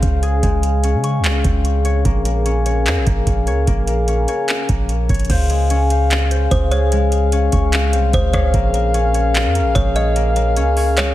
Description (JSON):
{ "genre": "hip hop, atmospheric cloud-rap", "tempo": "148 BPM", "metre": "4/4", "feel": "half-time", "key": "Db major", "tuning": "A4 = 440 Hz", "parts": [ { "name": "mellow French horn section", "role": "sustained chords", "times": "0.0-11.1 s", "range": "Db3 to F5", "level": "-21 LUFS", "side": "left 3 dB", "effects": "sidechain pumping" }, { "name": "concert harp", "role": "arpeggios", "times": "0.0-11.1 s", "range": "Ab3 to Db6", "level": "-24 LUFS", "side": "left 5 dB", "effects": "ping-pong delay" }, { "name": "warm 808-style bass", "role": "bass", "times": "0.0-11.1 s", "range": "Bb1 to Db3", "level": "-17 LUFS", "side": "right 1 dB", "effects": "none" }, { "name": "booming analog drum machine", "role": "drums", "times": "0.0-11.1 s", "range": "crash cymbal, handclaps, hi-hat, kick drum, rim click", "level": "-20 LUFS", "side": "right 1 dB", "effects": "none" }, { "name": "kalimba", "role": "melody", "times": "6.5-11.1 s", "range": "C5 to Eb5", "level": "-24 LUFS", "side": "equal", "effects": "ping-pong delay" } ], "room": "small room ambience", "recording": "heavily compressed radio sound", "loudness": "-14 LUFS", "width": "side -14 dB against mid", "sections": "0.0-5.3 A section; 5.3-11.1 B section", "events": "none", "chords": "0.0 Dbmaj7; 2.1 Bbm7; 5.3 Dbmaj7; 8.5 Bbm7" }